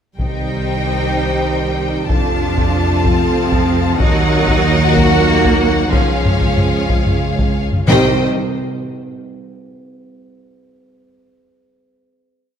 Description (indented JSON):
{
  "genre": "cinematic, epic orchestral film score",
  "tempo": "62 BPM (dotted quarters)",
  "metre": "6/8",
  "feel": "straight",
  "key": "C dorian",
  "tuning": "A4 = 439 Hz",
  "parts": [
    { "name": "clear symphonic violin section", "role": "melody", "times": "0.2-8.3 s", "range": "F5 to A5", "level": "-24 LUFS", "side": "left 2 dB", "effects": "none" },
    { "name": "rich symphonic violin section", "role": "second line", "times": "0.2-8.3 s", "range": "F4 to Eb5", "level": "-23 LUFS", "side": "left 3 dB", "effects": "none" },
    { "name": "warm studio viola section", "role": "accompaniment", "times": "0.2-8.3 s", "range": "F3 to Bb3", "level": "-23 LUFS", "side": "right 3 dB", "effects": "none" },
    { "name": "clear symphonic string section", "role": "sustained chords", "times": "0.2-8.3 s", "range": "Bb3 to G5", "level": "-26 LUFS", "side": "equal", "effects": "none" },
    { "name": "mellow French horn section", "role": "sustained chords", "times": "0.2-8.2 s", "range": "G3 to G4", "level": "-25 LUFS", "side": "left 3 dB", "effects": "none" },
    { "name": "warm trombone section", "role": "sustained chords", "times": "0.2-8.2 s", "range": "Bb2 to Gb3", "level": "-24 LUFS", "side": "right 3 dB", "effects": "none" },
    { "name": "clear symphonic cello section", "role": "bass", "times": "0.2-8.3 s", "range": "C4 to Gb4", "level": "-21 LUFS", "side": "equal", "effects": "none" },
    { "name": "rich symphonic double bass section", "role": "bass", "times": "0.2-8.3 s", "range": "C2 to F2", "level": "-19 LUFS", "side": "right 3 dB", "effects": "none" },
    { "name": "solo taiko drums", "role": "drums", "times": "0.2-8.0 s", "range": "none", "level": "-18 LUFS", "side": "left 1 dB", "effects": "none" },
    { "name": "timpani", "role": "percussion", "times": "0.2-1.1, 7.9-8.2 s", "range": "C3", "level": "-21 LUFS", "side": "equal", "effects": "none" }
  ],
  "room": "wet scoring stage reverb, RT60 1.9 s",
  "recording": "none",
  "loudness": "-13 LUFS",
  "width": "side -8 dB against mid",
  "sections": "0.2-7.9 theme; 7.9-9.9 final chord",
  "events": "none",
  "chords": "0.2 Cm; 2.1 F; 4.0 Ebm; 5.9 Db; 7.9 Cm",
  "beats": "| 0.20 1.15 | 2.10 3.06 | 4.01 4.97 | 5.93 6.91 | 7.90"
}